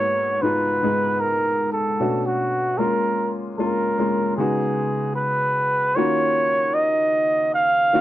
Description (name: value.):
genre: R&B.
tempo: 76 BPM.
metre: 4/4.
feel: swing 59% on 16ths.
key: Eb minor.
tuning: A4 = 439 Hz.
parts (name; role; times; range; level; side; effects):
warm flugelhorn; melody; 0.0-8.0 s; F#4 to F5; -20 LUFS; right 1 dB; slapback echo.
warm upright piano; accompaniment; 0.0-8.0 s; Ab2 to Ab4; -24 LUFS; left 2 dB; none.
room: light reverb.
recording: dry, close 1970s-style studio recording.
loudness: -19 LUFS.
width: side -14 dB against mid.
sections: 0.0-5.9 A section; 5.9-8.0 B section.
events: none.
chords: 0.0 Abm9; 2.0 Bm7; 2.8 Bbm7; 4.4 Db9sus4; 5.9 Ebm9.